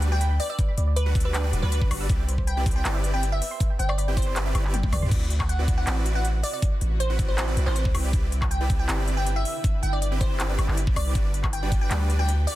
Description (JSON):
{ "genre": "future bass", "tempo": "159 BPM", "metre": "4/4", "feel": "half-time", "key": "C lydian", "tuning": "A4 = 440 Hz", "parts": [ { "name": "soft round pluck", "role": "arpeggios", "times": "0.0-5.1 s", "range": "B4 to E6", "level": "-40 LUFS", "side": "right 3 dB", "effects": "chorus, sidechain pumping, tape echo" }, { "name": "supersaw chords", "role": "riff", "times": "0.0-12.3 s", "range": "G3 to G5", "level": "-33 LUFS", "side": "right 1 dB", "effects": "sidechain pumping" }, { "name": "long sustained 808-style bass", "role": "bass", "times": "0.0-12.5 s", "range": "D1 to E2", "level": "-24 LUFS", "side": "equal", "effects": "sidechain pumping" }, { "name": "big-room dance drum kit", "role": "drums", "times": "0.0-12.6 s", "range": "crash cymbal, handclaps, hi-hat, toms, woodblock", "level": "-32 LUFS", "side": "left 1 dB", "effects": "overdrive" }, { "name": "glassy wavetable pluck", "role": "melody", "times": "0.1-12.5 s", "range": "B4 to G5", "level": "-32 LUFS", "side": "equal", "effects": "chorus, sidechain pumping, tape echo" }, { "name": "electronic kick drum", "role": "drums", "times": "0.6-11.8 s", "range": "none", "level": "-24 LUFS", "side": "equal", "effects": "none" }, { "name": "shimmering ambient pad", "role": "sustained chords", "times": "6.3-12.6 s", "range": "C3 to B4", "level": "-40 LUFS", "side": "right 1 dB", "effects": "chorus, built-in reverb, sidechain pumping" } ], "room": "digital ambience", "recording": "dense, heavily limited modern master", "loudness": "-22 LUFS", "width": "side -15 dB against mid", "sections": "0.0-5.1 A section; 5.1-12.6 A section", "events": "drop 0.0-5.1, 5.1-12.6; drum fill 4.7-5.1", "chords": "0.0 Gmaj7; 2.1 Cmaj9; 5.1 D13; 7.9 Cmaj9; 11.2 Gmaj7", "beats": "0.21 | 0.59 0.96 1.34 1.72 | 2.10 2.47 2.85 3.23 | 3.60 3.98 4.36 4.74 | 5.11 5.49 5.87 6.25 | 6.62 7.00 7.38 7.76 | 8.13 8.51 8.89 9.27 | 9.64 10.02 10.40 10.78 | 11.15 11.53 11.91 12.28" }